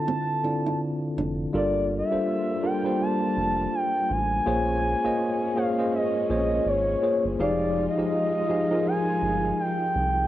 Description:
R&B; 82 BPM; 4/4; swing 59% on 16ths; A4 = 439 Hz
gliding portamento lead; melody; 0.0-10.3 s; Db5 to A5; -26 LUFS; equal; chorus, phaser, cassette tape
tine electric piano; accompaniment; 0.0-10.3 s; D3 to F5; -26 LUFS; left 1 dB; overdrive, fast stereo tremolo, cassette tape
nylon-string guitar; second line; 0.1-1.3 s; C4 to E4; -30 LUFS; right 3 dB; cassette tape
round analog bass; bass; 1.2-10.3 s; F1 to C2; -30 LUFS; equal
dark studio string section; sustained chords; 1.5-10.3 s; F3 to F4; -33 LUFS; right 1 dB; stereo widening, cassette tape
moderate booth ambience, RT60 0.2 s; home recording on cassette; -23 LUFS; side -14 dB against mid
0.0-1.5 A section; 1.5-10.3 B section
0.0 Dm9; 1.5 Gm9; 4.5 Bbm9; 7.4 Fm9
0.06 0.80 | 1.53 2.26 2.99 3.72 | 4.45 5.19 5.92 6.65 | 7.38 8.11 8.84 9.58

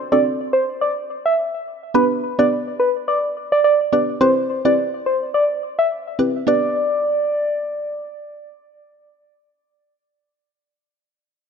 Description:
dancehall; 106 BPM; 4/4; swing 56% on 16ths; G major; A4 = 441 Hz
soft struck synth lead; melody; 0.1-8.1 s; B4 to E5; -18 LUFS; equal; chorus, ping-pong delay
mallet-like synth pluck; accompaniment; 0.1-9.7 s; B3 to B4; -20 LUFS; right 1 dB; chorus
moderate lush hall reverb, RT60 2.6 s; dark, warm production; -17 LUFS; side -6 dB against mid
0.0-6.5 A section; 6.5-8.7 B section
0.0 D7; 1.9 G; 4.2 Cmaj7; 6.5 G
0.25 0.81 1.38 | 1.95 2.51 3.08 3.65 | 4.21 4.78 5.34 5.91 | 6.47 7.04 7.61 8.17

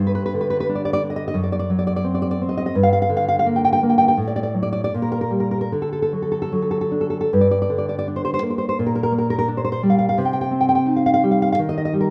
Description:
romantic piece for solo classical guitar; 85 BPM; 2/4; rubato; G minor; A4 = 440 Hz
nylon-string guitar; solo; 0.0-12.1 s; F#2 to G5; -20 LUFS; equal
moderate recital hall reverb, RT60 1.4 s; -20 LUFS; mono
0.0-7.3 A section; 7.3-12.1 B section
0.0 G5; 1.4 D7b9/F#; 2.8 Gm; 4.2 D/A; 4.9 Gm/Bb; 5.7 D; 7.3 Gm; 8.8 Gm/Bb; 10.2 Cm; 11.6 Cm/Eb (rootless)
0.65 | 1.36 2.06 | 2.75 3.45 | 4.16 4.90 | 5.70 6.51 | 7.32 8.04 | 8.76 9.46 | 10.17 10.86 | 11.56

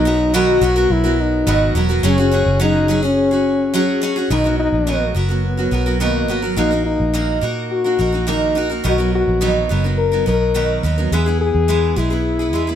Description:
acoustic pop; 106 BPM; 4/4; straight; B major; A4 = 437 Hz
warm French horn; melody; 0.0-12.8 s; A#3 to A#4; -19 LUFS; left 3 dB
picked steel-string acoustic guitar; accompaniment; 0.0-12.8 s; A#2 to A#4; -19 LUFS; right 2 dB
vintage muted fingered electric bass; bass; 0.0-12.8 s; E1 to A#2; -20 LUFS; equal
light reverb; -15 LUFS; side -9 dB against mid
0.0-4.3 A section; 4.3-12.8 B section
0.0 Bmaj7; 2.0 F#sus2; 4.3 Bmaj7; 6.6 D#m/A#; 8.8 Bmaj7; 11.1 E
0.33 0.90 1.47 | 2.03 2.60 3.17 3.73 | 4.30 4.87 5.44 6.00 | 6.57 7.14 7.71 8.28 | 8.85 9.41 9.98 10.55 | 11.12 11.69 12.25

